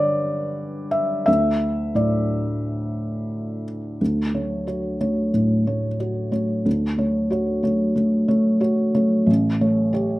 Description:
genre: classical, contemporary piece for solo felt piano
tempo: 91 BPM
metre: 4/4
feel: rubato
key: D major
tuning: A4 = 441 Hz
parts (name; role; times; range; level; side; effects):
- felt-muted upright piano; solo; 0.0-10.2 s; A1 to E5; -19 LUFS; equal; slapback echo
room: light reverb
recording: recorded outdoors, with no room sound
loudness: -19 LUFS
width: side -18 dB against mid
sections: 0.0-4.0 A section; 4.0-10.2 B section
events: none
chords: 0.0 G; 1.3 D5; 4.0 Dmaj7; 9.3 A7

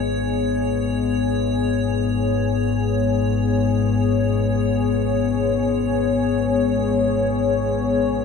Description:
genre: dark ambient drone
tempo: free time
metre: none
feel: none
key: unclear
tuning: A4 = 440 Hz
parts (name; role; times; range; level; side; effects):
- dark analog pad; sustained chords; 0.0-8.2 s; B3 to D#5; -21 LUFS; left 5 dB; chorus
- deep rumbling drone; drone; 0.0-8.2 s; G#1 to G#2; -23 LUFS; left 2 dB; built-in reverb
- icy glass pad; texture; 0.0-8.2 s; C#5; -28 LUFS; right 3 dB; chorus, built-in reverb
room: wet cathedral reverb, RT60 5.1 s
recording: small room reverb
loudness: -18 LUFS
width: side -5 dB against mid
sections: 0.0-8.2 A section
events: none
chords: 0.0 G#m

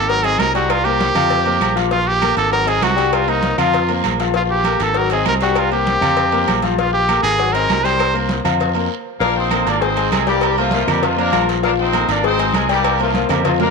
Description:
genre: latin, salsa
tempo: 198 BPM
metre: 4/4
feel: straight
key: unclear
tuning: A4 = 442 Hz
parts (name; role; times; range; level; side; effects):
- brilliant trumpet; melody; 0.0-8.1 s; Eb4 to C5; -18 LUFS; right 2 dB; tape echo
- clear concert grand piano; accompaniment; 0.0-13.7 s; F3 to Ab5; -20 LUFS; left 12 dB; none
- modern bright fingered electric bass; bass; 0.0-13.7 s; Ab1 to F2; -23 LUFS; right 2 dB; none
- congas; percussion; 0.1-13.7 s; none; -27 LUFS; right 2 dB; none
- cowbell; percussion; 0.1-13.6 s; none; -26 LUFS; left 10 dB; none
- guiro; percussion; 0.1-13.7 s; none; -31 LUFS; right 16 dB; none
- agogo bells and timbales; percussion; 0.2-13.7 s; none; -23 LUFS; right 15 dB; none
- claves; percussion; 0.4-13.4 s; none; -36 LUFS; left 12 dB; none
- brilliant horn section; melody; 9.2-13.7 s; F3 to D5; -19 LUFS; equal; none
room: moderate echo chamber reverb, RT60 1.9 s, studio ambience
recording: 1960s-style stereo with parts hard left and right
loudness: -14 LUFS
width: side -4 dB against mid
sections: 0.0-9.2 A section; 9.2-13.7 B section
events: stop 8.9-9.2; drum fill 13.3-13.7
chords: 0.1 Ab7; 0.7 C5; 1.3 Fsus4; 1.9 Bb5; 2.5 Ab7; 3.1 Cm7; 3.7 Fsus4; 4.3 Bb5; 5.0 Ab7; 5.6 C5; 6.2 Fsus4; 6.8 Bb5; 7.4 Ab7; 8.0 C5; 8.6 Fsus4; 9.2 Bbmaj7; 9.8 Ab; 10.4 C5; 11.0 Fsus4; 11.6 Bbmaj7; 12.2 Ab; 12.8 C5

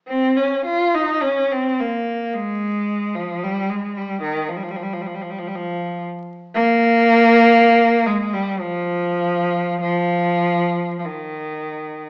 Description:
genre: classical, free, expressive piece for unaccompanied cello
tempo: 56 BPM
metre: 3/4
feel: uneven beats, rubato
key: unclear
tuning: A4 = 439 Hz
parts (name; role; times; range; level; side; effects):
- rich cello; solo; 0.1-12.1 s; Eb3 to F4; -16 LUFS; equal; none
room: wet recital hall reverb, RT60 1.4 s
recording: vinyl crackle, small speaker sound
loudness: -16 LUFS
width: side -28 dB against mid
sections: 0.0-12.1 A section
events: none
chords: none

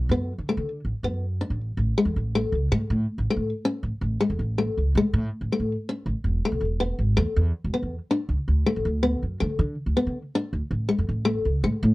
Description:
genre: highlife guitar band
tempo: 107 BPM (dotted quarters)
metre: 12/8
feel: straight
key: A major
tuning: A4 = 440 Hz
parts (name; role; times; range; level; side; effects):
- upright bass; bass; 0.0-11.9 s; E1 to D3; -24 LUFS; equal; none
- picked steel-string acoustic guitar; accompaniment; 0.1-11.8 s; G#3 to D4; -25 LUFS; left 2 dB; none
room: little or no reverb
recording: dry, close 1970s-style studio recording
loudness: -23 LUFS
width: side -19 dB against mid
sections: 0.0-1.8 A section; 1.8-11.9 B section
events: none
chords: 0.0 D6; 1.8 Amaj7; 6.2 Esus4; 8.5 D5; 10.7 Amaj7

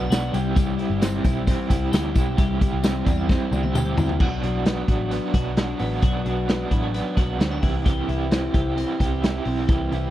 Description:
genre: jangly indie pop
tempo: 131 BPM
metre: 4/4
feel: straight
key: unclear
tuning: A4 = 440 Hz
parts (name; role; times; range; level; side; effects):
- raw garage guitar; accompaniment; 0.0-10.1 s; B2 to G4; -28 LUFS; right 6 dB; overdrive, tremolo
- twelve-string electric guitar; arpeggios; 0.0-10.1 s; E3 to G4; -27 LUFS; left 4 dB; lush chorus, tape echo
- vintage muted picked electric bass; bass; 0.0-10.1 s; G1 to E2; -27 LUFS; equal; none
- raw garage drum kit; drums; 0.1-10.0 s; crash cymbal, hi-hat, kick drum, snare drum, toms; -23 LUFS; equal; none
- tambourine; percussion; 0.1-4.1 s; none; -43 LUFS; left 7 dB; none
room: little or no reverb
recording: dry, close 1970s-style studio recording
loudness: -20 LUFS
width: side -13 dB against mid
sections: 0.0-4.2 A section; 4.2-10.1 B section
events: drum fill 3.3-4.2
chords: 0.3 C; 4.2 Bm; 7.6 C

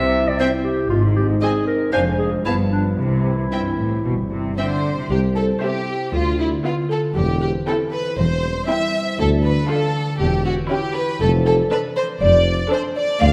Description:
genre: cinematic, playful, whimsical film cue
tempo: 118 BPM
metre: 4/4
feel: straight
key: C major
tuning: A4 = 438 Hz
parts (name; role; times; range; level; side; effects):
- warm clarinet; second line; 0.0-4.5 s; D4 to E5; -25 LUFS; equal; none
- mellow French horn section; sustained chords; 0.0-4.9 s; E3 to E4; -28 LUFS; equal; none
- concert harp; arpeggios; 0.0-13.3 s; F2 to A4; -29 LUFS; equal; none
- rich studio double bass section; bass; 0.0-13.3 s; E1 to D2; -27 LUFS; equal; none
- warm studio cello section; bass; 0.0-13.3 s; D2 to D3; -27 LUFS; equal; none
- rich studio violin section; melody; 0.4-13.1 s; E5 to A5; -36 LUFS; equal; none
- rich studio violin section; second line; 0.4-13.3 s; E4 to F5; -27 LUFS; equal; none
- rich studio viola section; accompaniment; 0.4-13.1 s; B3 to C5; -31 LUFS; equal; none
- folk marimba with soft mallets; melody; 4.6-13.3 s; E4 to F5; -25 LUFS; equal; none
- mellow tuba; bass; 5.1-13.3 s; E1 to D2; -26 LUFS; equal; none
room: wet scoring stage reverb, RT60 1.5 s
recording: none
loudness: -20 LUFS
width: mono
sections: 0.0-5.1 A section; 5.1-13.3 B section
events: none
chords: 0.0 C; 0.9 Ab; 1.9 Dm7b5/F; 2.5 G13; 3.0 C; 6.1 Bdim/D; 7.2 C/E; 9.2 Dm; 10.2 C#dim/E; 11.2 Dm/F

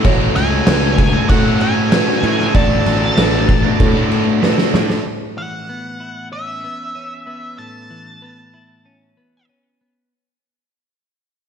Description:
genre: post-rock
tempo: 95 BPM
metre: 4/4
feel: straight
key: A major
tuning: A4 = 438 Hz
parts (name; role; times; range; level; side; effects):
- brassy analog pad; sustained chords; 0.0-5.0 s; C#3 to F#4; -30 LUFS; left 3 dB; none
- felt-muted upright piano; arpeggios; 0.0-5.1 s; A4 to D5; -25 LUFS; right 6 dB; tape echo
- raw garage guitar; riff; 0.0-5.0 s; A3 to A4; -22 LUFS; right 13 dB; overdrive, spring reverb
- sludgy distorted guitar; riff; 0.0-5.0 s; A3 to A4; -21 LUFS; left 13 dB; overdrive
- fuzz picked electric bass; bass; 0.0-5.0 s; A1 to A2; -19 LUFS; equal; overdrive
- oversized low-tuned drum kit; drums; 0.0-5.0 s; crash cymbal, kick drum, snare drum; -16 LUFS; equal; none
- octave-fuzz lead guitar; melody; 0.4-9.4 s; E5 to A5; -24 LUFS; equal; distortion, tape echo
- twelve-string electric guitar; arpeggios; 5.1-10.1 s; A2 to E4; -34 LUFS; left 1 dB; spring reverb, tape echo
room: light reverb, small room ambience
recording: dark, warm production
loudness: -12 LUFS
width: side -8 dB against mid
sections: 0.0-5.1 A section; 5.1-10.1 B section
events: drum fill 4.4-5.1; fade-out 5.1-10.1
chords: 0.0 F#m/A; 2.5 D6/A; 5.1 Aadd9

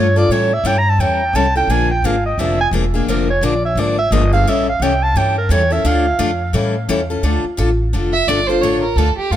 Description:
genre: acoustic string swing (jazz manouche)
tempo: 173 BPM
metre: 4/4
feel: swing 60% on 8ths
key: D harmonic minor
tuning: A4 = 440 Hz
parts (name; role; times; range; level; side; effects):
- warm clarinet; melody; 0.0-6.5 s; Bb4 to Bb5; -18 LUFS; right 3 dB; tape echo
- picked steel-string acoustic guitar; accompaniment; 0.0-9.4 s; D3 to A4; -19 LUFS; left 4 dB; none
- upright bass; bass; 0.0-9.4 s; E1 to A2; -18 LUFS; equal; none
- warm violin; second line; 8.1-9.4 s; F4 to E5; -17 LUFS; right 4 dB; none
room: light reverb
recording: none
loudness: -14 LUFS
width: side -11 dB against mid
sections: 0.0-7.2 A section; 7.2-9.4 A section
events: clarinet solo 0.0-7.2; violin solo 7.2-9.4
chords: 0.3 A7#9; 1.7 Bb7; 4.5 A7#9; 5.8 Dm; 6.5 A7; 7.2 Dm

